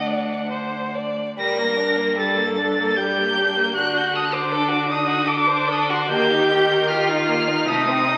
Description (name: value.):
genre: classical, slow romantic movement for string quartet.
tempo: 65-81 BPM.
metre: 3/4.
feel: rubato.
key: G minor.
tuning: A4 = 440 Hz.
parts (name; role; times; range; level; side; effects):
clear violin; melody; 0.0-8.2 s; F#5 to Bb6; -24 LUFS; equal; none.
rich violin; second line; 0.0-8.2 s; G3 to D5; -27 LUFS; equal; none.
rich viola; accompaniment; 0.0-8.2 s; D4 to Bb4; -26 LUFS; equal; none.
rich cello; bass; 0.0-8.2 s; D2 to Eb3; -30 LUFS; equal; none.
room: wet recital hall reverb, RT60 1.8 s.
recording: very old 78 rpm record, vinyl crackle.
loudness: -20 LUFS.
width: mono.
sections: 0.0-1.4 A section; 1.4-8.2 B section.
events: none.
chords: 0.0 D; 1.4 Gm; 3.8 D7; 6.1 Eb; 7.7 Adim/C.